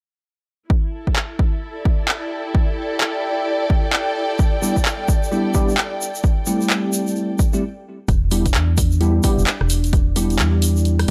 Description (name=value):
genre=UK garage, two-step garage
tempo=130 BPM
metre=4/4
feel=swing 61% on 16ths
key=E minor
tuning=A4 = 440 Hz
part: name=warm analog pad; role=sustained chords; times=0.7-11.1 s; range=D4 to G5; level=-38 LUFS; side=equal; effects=none
part: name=electronic kick drum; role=drums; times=0.7-11.1 s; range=none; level=-20 LUFS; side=equal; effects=none
part: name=warm studio string section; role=texture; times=0.7-7.6 s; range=E4 to G5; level=-28 LUFS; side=equal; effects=sidechain pumping
part: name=punchy analog drum machine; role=drums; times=1.2-11.1 s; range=handclaps, hi-hat, rim click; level=-24 LUFS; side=equal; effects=none
part: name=tube shaker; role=percussion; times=4.4-11.0 s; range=none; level=-32 LUFS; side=equal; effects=none
part: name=bell-like tine electric piano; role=stabs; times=4.6-11.1 s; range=G3 to G4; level=-24 LUFS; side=equal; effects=ensemble chorus, delay
part: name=organ-like FM bass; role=bass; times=8.1-11.1 s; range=E1 to E2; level=-20 LUFS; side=equal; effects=none
room=light reverb, digital ambience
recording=none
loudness=-19 LUFS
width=mono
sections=0.7-8.1 A section; 8.1-11.1 B section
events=stop 7.6-8.1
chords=0.7 Em7; 6.0 Am7; 8.1 Em7